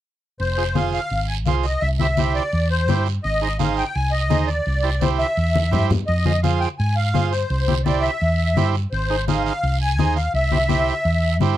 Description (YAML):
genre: latin, cumbia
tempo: 169 BPM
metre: 4/4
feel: straight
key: F dorian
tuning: A4 = 439 Hz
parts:
  - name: musette accordion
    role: melody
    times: 0.4-11.4 s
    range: C5 to Ab5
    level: -23 LUFS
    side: left 1 dB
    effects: none
  - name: hollow-body short-scale fingered electric bass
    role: bass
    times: 0.4-11.6 s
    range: F1 to Ab2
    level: -21 LUFS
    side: equal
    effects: none
  - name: guiro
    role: percussion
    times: 0.4-11.6 s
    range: none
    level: -35 LUFS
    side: right 17 dB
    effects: none
  - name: combo organ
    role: accompaniment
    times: 0.6-11.6 s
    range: Eb4 to C5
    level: -25 LUFS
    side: right 9 dB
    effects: none
  - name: congas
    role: percussion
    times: 0.8-11.6 s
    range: none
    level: -23 LUFS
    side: left 5 dB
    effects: none
room: light reverb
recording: dry, close 1970s-style studio recording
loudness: -18 LUFS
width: side -13 dB against mid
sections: 0.4-11.6 A section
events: drum fill 5.6-6.1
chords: 0.4 Fm; 1.8 C; 3.2 Ab; 4.7 C; 6.1 Fm; 7.5 C; 8.9 Ab; 10.3 C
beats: | 0.40 0.76 1.11 1.47 | 1.82 2.18 2.54 2.89 | 3.25 3.60 3.96 4.31 | 4.67 5.02 5.38 5.73 | 6.08 6.44 6.79 7.15 | 7.50 7.86 8.21 8.57 | 8.92 9.28 9.63 9.99 | 10.34 10.70 11.05 11.41